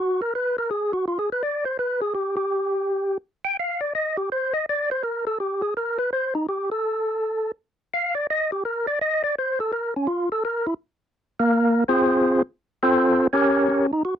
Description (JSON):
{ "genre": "jazz", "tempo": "166 BPM", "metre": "4/4", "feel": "swing 64% on 8ths", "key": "unclear", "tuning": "A4 = 440 Hz", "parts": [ { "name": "percussive tonewheel organ", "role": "solo", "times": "0.0-14.1 s", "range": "Bb3 to G5", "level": "-21 LUFS", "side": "equal", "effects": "slow rotary speaker" } ], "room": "little or no reverb", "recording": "dry, close 1970s-style studio recording", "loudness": "-21 LUFS", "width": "side -9 dB against mid", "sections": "0.0-2.5 A section; 2.5-14.0 A section", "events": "tonewheel organ solo 0.0-14.0", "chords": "0.0 N.C.; 11.1 Fm; 12.6 F/C; 13.3 Eb7/Db" }